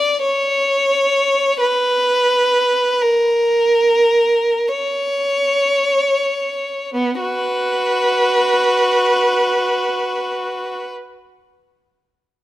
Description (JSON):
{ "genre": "classical, free, expressive piece for unaccompanied violin", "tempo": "21-45 BPM", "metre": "4/4", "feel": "rubato", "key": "unclear", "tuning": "A4 = 440 Hz", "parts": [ { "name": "rich violin", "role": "solo", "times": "0.0-10.9 s", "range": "B3 to D5", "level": "-15 LUFS", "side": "equal", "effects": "none" } ], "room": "light reverb", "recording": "close, detailed microphones", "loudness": "-14 LUFS", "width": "side -14 dB against mid", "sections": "0.0-6.9 A section; 6.9-12.4 B section", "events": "slowing down 0.0-6.9", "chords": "none" }